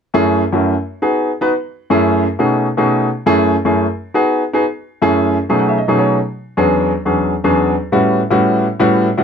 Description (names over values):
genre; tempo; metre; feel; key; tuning
jazz; 154 BPM; 4/4; straight; E major; A4 = 445 Hz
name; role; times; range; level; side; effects
warm grand piano; solo; 0.1-9.2 s; E2 to F#5; -12 LUFS; equal; none
room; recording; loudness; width
light reverb; none; -13 LUFS; side -7 dB against mid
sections
0.0-6.2 A section; 6.2-9.2 B section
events
grand piano fill 5.4-6.2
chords
0.0 F#m9; 0.7 G#m7; 1.5 F#m9; 2.3 B13; 3.1 F#m9; 3.9 G#m7; 4.6 F#m9; 5.4 B13; 6.2 E13; 7.7 A13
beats
0.34 0.73 1.12 | 1.51 1.91 2.29 2.69 | 3.07 3.46 3.85 4.24 | 4.63 5.02 5.41 5.79 | 6.18 6.57 6.96 7.34 | 7.73 8.12 8.51 8.89